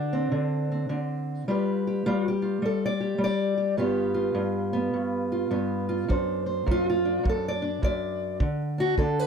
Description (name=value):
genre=acoustic country blues, solo or duo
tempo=104 BPM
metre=4/4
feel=swing 65% on 8ths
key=unclear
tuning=A4 = 442 Hz
part: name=fingerpicked steel-string acoustic guitar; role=melody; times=0.0-9.3 s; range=F#2 to D5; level=-24 LUFS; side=equal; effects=none
part: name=kick drum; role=drums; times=6.1-9.1 s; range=none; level=-26 LUFS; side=right 1 dB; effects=none
room=small room ambience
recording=dry, close 1970s-style studio recording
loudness=-24 LUFS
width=side -6 dB against mid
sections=0.0-9.3 A section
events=steel-string acoustic guitar solo 0.0-9.3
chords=0.0 D7(no3); 1.5 G7; 6.1 D7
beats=0.32 0.90 | 1.48 2.05 2.63 3.21 | 3.78 4.36 4.94 5.51 | 6.09 6.67 7.24 7.82 | 8.39 8.96